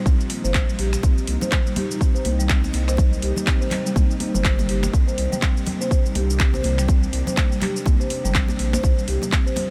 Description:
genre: afro house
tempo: 123 BPM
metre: 4/4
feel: swing 58% on 16ths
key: C minor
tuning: A4 = 440 Hz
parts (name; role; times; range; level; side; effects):
- ethereal airy pad; sustained chords; 0.0-9.7 s; Bb2 to F4; -34 LUFS; equal; ensemble chorus, built-in reverb, phaser, sidechain pumping
- marimba with soft mallets; arpeggios; 0.0-9.6 s; G3 to C5; -29 LUFS; equal; sidechain pumping, delay
- round analog bass; bass; 0.1-9.2 s; G1 to C2; -26 LUFS; equal; sidechain pumping
- afro-pop drum kit; drums; 0.1-9.7 s; cabasa, finger snaps, handclaps, hi-hat; -30 LUFS; equal; none
- electronic kick drum; drums; 0.1-9.4 s; none; -21 LUFS; equal; none
- congas; percussion; 1.0-9.7 s; none; -32 LUFS; equal; none
room: light reverb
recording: none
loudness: -21 LUFS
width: mono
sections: 0.0-9.7 A section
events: none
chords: 0.0 Ebsus2; 1.0 Cm7; 8.8 Ebsus2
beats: 0.06 0.54 | 1.03 1.52 2.01 2.50 | 2.98 3.47 3.96 4.45 | 4.93 5.42 5.91 6.40 | 6.89 7.37 7.86 8.35 | 8.84 9.32

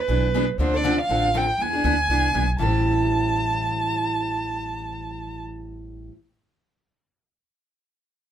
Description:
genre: acoustic string swing (jazz manouche)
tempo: 238 BPM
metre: 4/4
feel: swing 55% on 8ths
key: A minor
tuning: A4 = 442 Hz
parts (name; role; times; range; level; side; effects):
- warm violin; melody; 0.0-5.4 s; B4 to A5; -24 LUFS; right 2 dB; none
- picked steel-string acoustic guitar; accompaniment; 0.1-6.1 s; A2 to A4; -26 LUFS; equal; none
- upright bass; bass; 0.1-6.1 s; A1 to E2; -26 LUFS; equal; none
room: light reverb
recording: minimal, uncompressed stereo recording, lossy compression artefacts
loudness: -20 LUFS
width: side -10 dB against mid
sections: 0.0-2.6 A section; 2.6-4.6 B section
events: none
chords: 0.0 E7; 0.6 Dm7; 1.6 E7; 2.6 Am7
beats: 0.08 0.33 | 0.58 0.83 1.08 1.34 | 1.59 1.84 2.09 2.34 | 2.60 2.85 3.10 3.35 | 3.60 3.86 4.11 4.36

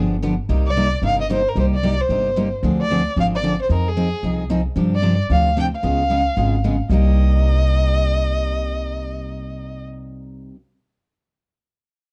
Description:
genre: acoustic string swing (jazz manouche)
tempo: 225 BPM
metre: 4/4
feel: swing 57% on 8ths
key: C minor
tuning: A4 = 440 Hz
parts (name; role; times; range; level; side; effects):
- picked steel-string acoustic guitar; accompaniment; 0.0-10.6 s; C3 to Ab4; -25 LUFS; equal; none
- upright bass; bass; 0.0-10.5 s; G1 to G2; -22 LUFS; equal; none
- warm violin; melody; 0.7-9.8 s; Ab4 to G5; -25 LUFS; equal; none
room: light reverb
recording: dark, warm production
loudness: -19 LUFS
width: mono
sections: 0.0-2.6 A section; 2.6-6.9 B section; 6.9-9.0 C section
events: none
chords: 0.5 Cm9; 2.6 Dm7b5; 3.7 Fm7; 4.8 G7sus4; 5.8 Db7; 6.9 Cm7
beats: 0.23 | 0.50 0.76 1.03 1.30 | 1.57 1.83 2.10 2.37 | 2.63 2.90 3.17 3.44 | 3.70 3.97 4.24 4.50 | 4.77 5.04 5.30 5.57 | 5.84 6.11 6.37 6.64 | 6.91 7.17 7.44 7.71 | 7.98 8.24 8.51 8.78

